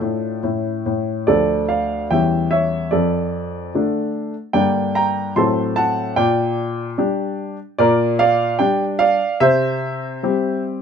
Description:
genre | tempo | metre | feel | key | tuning
classical-period piano sonatina | 74 BPM | 2/4 | straight | D minor | A4 = 440 Hz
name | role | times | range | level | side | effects
warm baby grand piano | solo | 0.0-10.8 s | D2 to C6 | -17 LUFS | equal | none
room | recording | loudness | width
moderate studio reverb, RT60 0.5 s | none | -17 LUFS | side -7 dB against mid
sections
0.0-1.3 A section; 1.3-10.8 B section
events
none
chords
0.4 A; 1.3 Dm; 2.1 C#dim/E; 2.9 Dm/F; 4.5 Gm; 5.4 F#dim/A; 6.2 Gm/Bb; 9.4 C

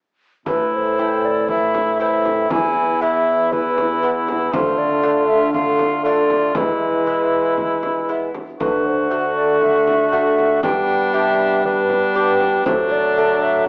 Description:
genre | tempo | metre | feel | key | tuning
classical, renaissance-style consort dance | 118 BPM | 4/4 | straight | A minor | A4 = 440 Hz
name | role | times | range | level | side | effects
mellow hollow tenor recorder | melody | 0.5-13.7 s | B4 to G#5 | -24 LUFS | equal | none
warm cor anglais | second line | 0.5-13.6 s | D4 to F#4 | -24 LUFS | equal | none
lute | accompaniment | 0.5-13.7 s | E2 to A4 | -27 LUFS | equal | none
mellow bassoon | accompaniment | 0.5-13.6 s | E3 to B3 | -25 LUFS | equal | none
warm trombone | bass | 0.5-13.7 s | E2 to G3 | -25 LUFS | equal | none
frame drum | percussion | 0.5-13.7 s | none | -31 LUFS | equal | none
room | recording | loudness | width
wet stone room reverb, RT60 1.3 s | worn, warbling old tape, cassette tape, warbly pitch drift, small speaker sound | -18 LUFS | mono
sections
0.5-13.7 A section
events
none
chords
0.5 Am; 2.5 E; 4.5 Dm; 6.6 E; 8.6 D; 10.6 G; 12.7 D/F#

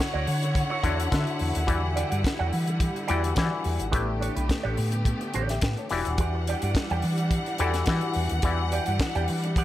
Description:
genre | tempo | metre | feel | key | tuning
disco | 107 BPM | 4/4 | straight | E dorian | A4 = 442 Hz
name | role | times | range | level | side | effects
auto-wah clav | accompaniment | 0.0-9.5 s | D3 to A5 | -31 LUFS | left 5 dB | overdrive
electric guitar with an envelope filter | accompaniment | 0.0-9.6 s | D4 to G5 | -33 LUFS | right 7 dB | phaser
clear symphonic string section | sustained chords | 0.0-9.6 s | D3 to F#5 | -31 LUFS | equal | none
tight funk drum kit | drums | 0.0-9.6 s | hi-hat, kick drum, snare drum | -29 LUFS | equal | none
hollow-body short-scale fingered electric bass | bass | 0.1-9.6 s | D#1 to E3 | -27 LUFS | equal | none
room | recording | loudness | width
studio reverb | none | -24 LUFS | side -14 dB against mid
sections
0.0-9.6 A section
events
none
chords
0.0 Dmaj9; 1.7 Em9; 3.9 A9sus4; 5.9 Em9

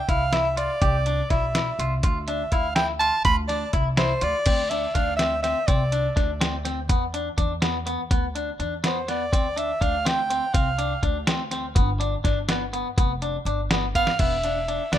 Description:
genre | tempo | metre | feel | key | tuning
progressive instrumental, band music in an uneven meter | 247 BPM (eighths) | 5/8 | straight | unclear | A4 = 440 Hz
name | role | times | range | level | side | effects
warm soprano saxophone | melody | 0.0-6.2, 8.9-11.0, 14.0-15.0 s | C5 to B5 | -25 LUFS | right 2 dB | digital delay
clean electric guitar | arpeggios | 0.1-15.0 s | B3 to G4 | -28 LUFS | left 2 dB | none
upright bass | bass | 0.1-15.0 s | E1 to E2 | -29 LUFS | equal | none
lo-fi sampler-style drum kit | drums | 0.1-15.0 s | crash cymbal, hi-hat, kick drum, snare drum | -24 LUFS | equal | none
room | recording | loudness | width
light reverb, digital ambience | rough home demo mix | -21 LUFS | side -11 dB against mid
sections
0.0-4.5 A section; 4.5-14.2 B section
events
soprano saxophone solo 0.0-4.5; drum fill 14.0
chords
0.0 Cmaj7; 2.0 Dm7; 4.5 Cadd9; 6.9 E5; 9.3 Dm7; 11.8 G7; 14.2 E5

